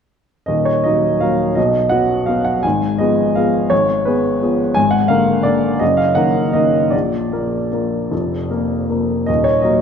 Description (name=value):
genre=classical, piano waltz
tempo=148-181 BPM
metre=3/4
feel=rubato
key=Eb minor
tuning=A4 = 438 Hz
part: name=clear upright piano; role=solo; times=0.5-9.8 s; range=Eb1 to Ab5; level=-14 LUFS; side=equal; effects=none
room=wet recital hall reverb, RT60 1.5 s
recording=dark, warm production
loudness=-14 LUFS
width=side -7 dB against mid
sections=0.5-9.8 A section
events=none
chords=0.5 Ebm; 1.6 B; 2.6 Fdim/Ab; 4.8 Bb7/Ab; 5.8 Ebm/Gb; 6.9 Bb; 9.3 Ebm